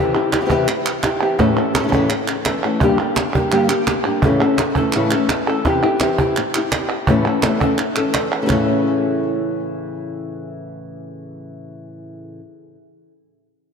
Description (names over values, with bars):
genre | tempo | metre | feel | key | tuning
flamenco | 169 BPM | 4/4 | straight | unclear | A4 = 439 Hz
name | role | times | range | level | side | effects
flamenco guitar | melody | 0.0-12.4 s | G2 to A4 | -18 LUFS | left 1 dB | analog chorus, ping-pong delay
palmas hand claps | percussion | 0.1-8.6 s | none | -23 LUFS | right 5 dB | none
cajon | percussion | 0.3-8.6 s | none | -23 LUFS | right 2 dB | none
room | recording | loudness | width
wet lush hall reverb, RT60 2.4 s | dreamy mix soaked in reverb | -15 LUFS | side -6 dB against mid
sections
0.0-8.5 A section; 8.5-11.3 B section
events
none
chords
0.0 C; 1.4 A; 2.8 Gm; 4.2 A; 5.7 C; 7.1 A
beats
0.33 0.68 1.04 | 1.39 1.75 2.10 2.46 | 2.81 3.17 3.52 3.88 | 4.23 4.59 4.94 5.30 | 5.65 6.01 6.36 6.72 | 7.07 7.43 7.79 8.14 | 8.49 8.85 9.20 9.56 | 9.91 10.27 10.62 10.97